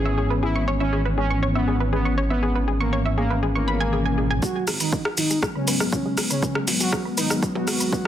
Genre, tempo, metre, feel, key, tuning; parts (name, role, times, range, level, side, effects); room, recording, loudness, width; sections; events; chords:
melodic techno; 120 BPM; 4/4; straight; G# minor; A4 = 440 Hz
analog synth brass; melody; 0.0-8.1 s; C#3 to G#4; -26 LUFS; right 1 dB; chorus, sidechain pumping, digital delay
brassy analog pad; stabs; 0.0-8.1 s; B2 to C#4; -27 LUFS; left 2 dB; chorus, sidechain pumping, digital delay
swelling detuned saw bass; bass; 0.0-7.9 s; G#1; -25 LUFS; equal; sidechain pumping, high-pass filter
analog pluck; arpeggios; 0.1-8.0 s; F#4 to C#6; -29 LUFS; equal; chorus, vintage 12-bit sampler grit, sidechain pumping, digital delay
deep house drum kit; drums; 4.4-8.0 s; hi-hat, rim click, shaker, toms; -24 LUFS; equal; overdrive, high-pass filter on perc, studio reverb, high-pass filter on snare, high-pass filter on toms, high-pass filter on hats
electronic kick drum; drums; 4.4-8.0 s; -27 LUFS; right 1 dB; overdrive, high-pass filter on kick, studio reverb
light reverb; dense, heavily limited modern master; -20 LUFS; side -11 dB against mid
0.0-4.4 A section; 4.4-8.1 B section
build-up 4.4-8.1; filter sweep on synth arpeggio sound 4.4-8.1; filter sweep on analog polysynth 4.4-8.1; filter sweep on analog synth pad 4.4-8.1
0.0 C#m7/G#; 4.4 G#m7